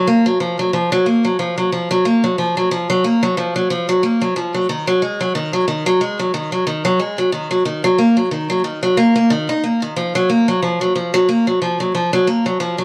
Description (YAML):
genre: folktronica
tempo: 91 BPM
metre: 4/4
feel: swing 56% on 16ths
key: F# major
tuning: A4 = 436 Hz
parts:
  - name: picked acoustic archtop guitar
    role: solo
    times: 0.0-12.8 s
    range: D#3 to D#4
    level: -17 LUFS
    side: equal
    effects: vintage 12-bit sampler grit
room: light reverb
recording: vinyl crackle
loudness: -17 LUFS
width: mono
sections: 0.0-10.0 A section; 10.0-12.8 B section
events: none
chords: none